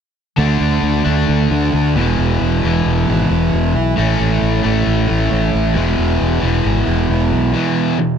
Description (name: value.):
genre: rock.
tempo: 134 BPM.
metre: 4/4.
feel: straight.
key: E mixolydian.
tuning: A4 = 440 Hz.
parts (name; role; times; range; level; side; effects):
cranked stack guitar; riff; 0.4-8.2 s; E2 to D4; -18 LUFS; left 8 dB; overdrive.
sludgy distorted guitar; riff; 0.4-8.2 s; E2 to F#4; -18 LUFS; right 13 dB; overdrive.
growling fingered electric bass; bass; 0.4-7.5 s; E1 to D2; -17 LUFS; left 1 dB; overdrive.
room: little or no reverb.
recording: dry, close 1970s-style studio recording.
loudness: -13 LUFS.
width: side -8 dB against mid.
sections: 0.4-7.5 A section.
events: none.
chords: 0.4 D; 2.0 E; 4.0 A; 5.8 E; 7.5 E5.